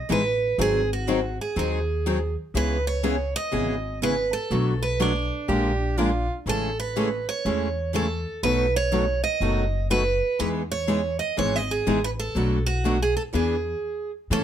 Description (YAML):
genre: acoustic string swing (jazz manouche)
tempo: 122 BPM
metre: 4/4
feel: swing 63% on 8ths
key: E major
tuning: A4 = 440 Hz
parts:
  - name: picked steel-string acoustic guitar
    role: melody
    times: 0.0-14.4 s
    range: D4 to D#5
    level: -26 LUFS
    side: right 4 dB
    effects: none
  - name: upright bass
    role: bass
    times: 0.0-14.4 s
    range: F#1 to A2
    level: -28 LUFS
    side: left 1 dB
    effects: none
  - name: picked steel-string acoustic guitar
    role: accompaniment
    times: 0.1-14.4 s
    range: B2 to A#4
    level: -27 LUFS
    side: left 5 dB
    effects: none
  - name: picked steel-string acoustic guitar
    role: accompaniment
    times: 0.1-14.4 s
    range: B2 to B4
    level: -30 LUFS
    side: right 5 dB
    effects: none
  - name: breathy soprano saxophone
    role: second line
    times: 5.5-6.4 s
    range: E#4 to G4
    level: -27 LUFS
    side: right 3 dB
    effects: none
room: light reverb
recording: none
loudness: -22 LUFS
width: side -10 dB against mid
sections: 0.0-14.3 A section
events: stop 13.8-14.3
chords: 0.0 Emaj7; 0.6 G#7; 2.5 C#m9; 4.5 Bm7; 5.5 A#6; 6.5 Amaj9; 8.4 B7; 10.4 Emaj7; 12.4 Bm7; 13.3 E7